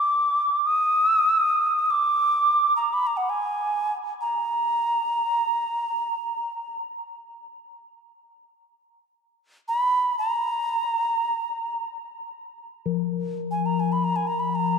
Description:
world meditative, free-time meditation music; free time; A4 = 440 Hz
alto ocarina; melody; 0.0-14.8 s; Gb5 to Eb6; -22 LUFS; right 1 dB; ping-pong delay
bronze singing bowl; texture; 12.9-14.8 s; F3; -25 LUFS; left 9 dB
wet cathedral reverb, RT60 4.3 s; -21 LUFS; side -6 dB against mid
0.0-12.1 A section; 12.1-14.8 A section

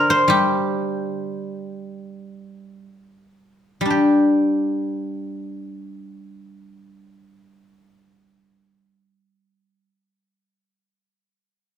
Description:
chinese traditional, Chinese solo plucked strings; free time; G yu mode; A4 = 440 Hz
guzheng; solo; 0.0-9.9 s; D3 to D5; -19 LUFS; left 1 dB
light reverb; minimal, uncompressed stereo recording; -18 LUFS; side -9 dB against mid
0.0-3.9 A section; 3.9-7.9 B section
slowing down 0.0-3.9

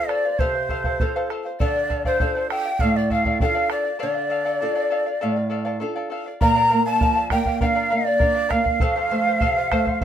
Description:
andean folk, Andean ensemble; 100 BPM; 4/4; straight; D minor; A4 = 436 Hz
breathy large quena; melody; 0.0-10.0 s; C5 to Bb5; -23 LUFS; right 2 dB
mellow polished pan flute; second line; 0.0-10.0 s; C5 to Bb5; -26 LUFS; left 6 dB
charango; accompaniment; 0.0-10.0 s; A4 to F5; -28 LUFS; left 1 dB
nylon-string guitar; accompaniment; 0.0-10.0 s; F2 to A4; -26 LUFS; right 2 dB
bombo; percussion; 0.1-10.0 s; -25 LUFS; right 1 dB
moderate studio ambience, RT60 0.5 s; minimal, uncompressed stereo recording; -19 LUFS; side -9 dB against mid
0.0-6.4 A section; 6.4-10.0 B section
break 4.0-6.4
0.0 F; 1.6 Dm; 6.4 Bb; 8.8 F

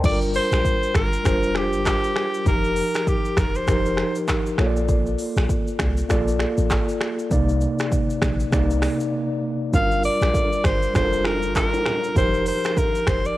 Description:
afrobeats; 99 BPM; 4/4; swing 58% on 16ths; G minor; A4 = 439 Hz
mellow tine electric piano; accompaniment; 0.0-13.4 s; C3 to G5; -24 LUFS; equal; medium stereo tremolo
warm 808-style bass; bass; 0.0-13.3 s; F1 to C2; -24 LUFS; equal
afro-pop drum kit; drums; 0.0-13.4 s; crash cymbal, finger snaps, handclaps, hi-hat, kick drum, rim click, shaker; -24 LUFS; equal; cassette tape
breathy alto saxophone; melody; 0.1-4.2, 9.8-13.4 s; G4 to F5; -24 LUFS; equal
congas and bongos; percussion; 9.7-12.9 s; -33 LUFS; right 2 dB
light reverb, digital ambience; home recording on cassette; -19 LUFS; side -16 dB against mid
0.0-13.4 A section
break 9.1-9.7
0.0 Gm7; 2.5 F9sus4; 4.6 Bbmaj7; 7.3 Cm9; 9.7 Gm7; 12.2 F9sus4

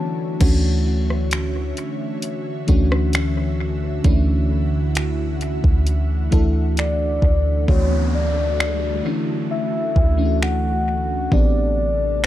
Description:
contemporary R&B; 66 BPM; 4/4; straight; D major; A4 = 440 Hz
FM electric piano with soft pad layer; accompaniment; 0.0-12.3 s; E3 to A4; -24 LUFS; left 1 dB; chorus, analog delay
ethereal airy pad; sustained chords; 0.0-12.3 s; C3 to F#5; -29 LUFS; equal; ensemble chorus, built-in reverb
soft 808-style bass; bass; 0.4-12.3 s; A1 to D2; -20 LUFS; equal
smooth R&B drum kit; drums; 0.4-12.3 s; crash cymbal, finger snaps, hi-hat, kick drum, rim click; -20 LUFS; equal
soft octave-layered synth lead; melody; 6.8-12.3 s; C#5 to F#5; -24 LUFS; left 2 dB; chorus, analog delay
downlifter; sound effects; 7.7-12.3 s; -32 LUFS; left 1 dB
little or no reverb; echo-heavy mix; -17 LUFS; side -13 dB against mid
0.4-7.7 A section; 7.7-12.3 B section
break 0.0-0.4
0.4 Dmaj9; 11.3 Am11

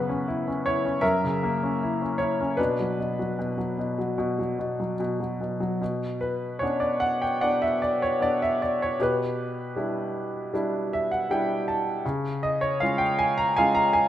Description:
classical, lyrical solo piano; 76 BPM; 4/4; uneven beats, rubato; B minor; A4 = 439 Hz
clear upright piano; solo; 0.0-14.1 s; F#2 to A#5; -23 LUFS; equal
moderate scoring stage reverb, RT60 1.9 s; minimal, uncompressed stereo recording; -24 LUFS; side -12 dB against mid
0.0-5.8 A section; 5.8-14.1 B section
upright piano fill 10.5-12.0
0.0 F#7sus4; 1.0 F#7; 2.6 Bm; 5.8 Bmadd9; 9.0 Em7/B; 12.0 C#

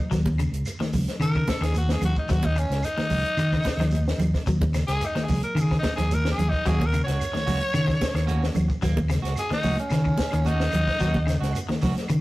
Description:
afrobeat; 110 BPM; 4/4; straight; Eb minor; A4 = 440 Hz
raspy tenor saxophone; melody; 0.0-11.5 s; Db4 to Db5; -28 LUFS; equal
clean electric guitar; arpeggios; 0.1-12.2 s; Db3 to Gb3; -31 LUFS; left 2 dB
fingered electric bass; bass; 0.1-12.2 s; Db2 to Eb3; -25 LUFS; equal
compact cocktail drum kit; drums; 0.1-12.2 s; hi-hat, kick drum, snare drum; -30 LUFS; equal
congas; percussion; 0.1-12.2 s; -30 LUFS; right 1 dB
shekere; percussion; 0.1-12.2 s; -39 LUFS; right 1 dB
claves; percussion; 0.4-12.2 s; -45 LUFS; right 2 dB
electric guitar at the edge of break-up; stabs; 6.7-12.1 s; Bb3 to Gb4; -35 LUFS; right 5 dB
moderate stone room reverb, RT60 1.1 s; rough rehearsal-room recording, tube saturation; -21 LUFS; side -18 dB against mid
0.0-12.2 A section
tenor saxophone solo 0.0-12.2
0.0 Ebm7

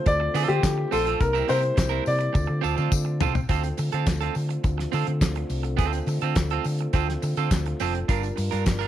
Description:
disco; 105 BPM; 4/4; straight; D minor; A4 = 440 Hz
warm baby grand piano; melody; 0.0-3.2 s; G4 to D5; -25 LUFS; left 2 dB
dark French horn section; sustained chords; 0.0-8.9 s; C3 to Bb4; -34 LUFS; equal
electric guitar at the edge of break-up; accompaniment; 0.1-8.9 s; C4 to C5; -29 LUFS; right 14 dB; warbly pitch drift
hollow-body short-scale fingered electric bass; bass; 0.1-8.9 s; F1 to D3; -26 LUFS; equal
damped 70s drum kit; drums; 0.1-8.9 s; handclaps, hi-hat, kick drum, snare drum, toms; -26 LUFS; equal
tambourine; percussion; 0.1-8.8 s; -41 LUFS; left 19 dB
light reverb, small room ambience; 1960s-style stereo with parts hard left and right; -22 LUFS; side -12 dB against mid
0.0-3.5 A section; 3.5-8.9 B section
drum fill 2.4-3.5
0.0 Dm7; 1.2 C7; 2.4 Dm7; 8.1 Gm7

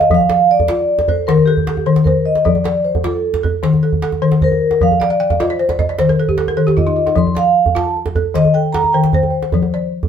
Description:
west african traditional, West African string and xylophone music; 102 BPM (dotted quarters); 12/8; straight; F mixolydian; A4 = 440 Hz
vibraphone with soft mallets; melody; 0.0-9.9 s; G4 to C6; -15 LUFS; right 1 dB
balafon; arpeggios; 0.0-10.1 s; Eb3 to G5; -16 LUFS; left 3 dB
djembe; percussion; 0.0-10.1 s; -20 LUFS; right 3 dB
moderate studio reverb, RT60 0.7 s; minimal, uncompressed stereo recording; -12 LUFS; side -8 dB against mid
0.0-10.1 A section
vibraphone solo 0.0-10.1; balafon fill 5.1-7.2
0.1 F; 1.3 Eb; 2.5 F; 3.6 Eb5; 4.8 F5; 6.0 N.C.; 7.2 F; 8.3 Eb; 9.5 F5

